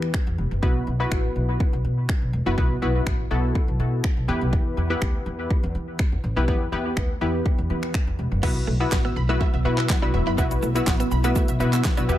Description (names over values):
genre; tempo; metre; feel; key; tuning
dance-pop; 123 BPM; 4/4; straight; unclear; A4 = 439 Hz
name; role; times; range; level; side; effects
funky polysynth comp; accompaniment; 0.0-12.2 s; B3 to B4; -27 LUFS; left 2 dB; chorus, sidechain pumping, analog delay
upright bass; bass; 0.0-12.2 s; E1 to E3; -24 LUFS; equal; sidechain pumping
pop drum kit; drums; 0.0-12.2 s; crash cymbal, finger snaps, handclaps, hi-hat, kick drum, shaker, snare drum; -24 LUFS; equal; none
ethereal airy pad; sustained chords; 9.2-12.2 s; F#3 to E4; -31 LUFS; right 1 dB; ensemble chorus, built-in reverb, sidechain pumping
wide unison pluck; arpeggios; 8.4-12.2 s; E5 to E6; -34 LUFS; right 3 dB; sidechain pumping, analog delay
direct-recorded clean electric guitar; riff; 8.4-12.1 s; A3 to E4; -33 LUFS; right 5 dB; wide subtle chorus, analog delay
room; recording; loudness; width
digital ambience; echo-heavy mix; -20 LUFS; side -13 dB against mid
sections
0.0-8.4 A section; 8.4-12.2 B section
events
none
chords
0.0 Em; 0.6 Bsus4; 4.3 Em; 8.4 Bsus4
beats
0.14 | 0.63 1.11 1.60 2.09 | 2.58 3.06 3.55 4.04 | 4.53 5.02 5.50 5.99 | 6.48 6.97 7.46 7.94 | 8.43 8.92 9.41 9.89 | 10.38 10.87 11.36 11.85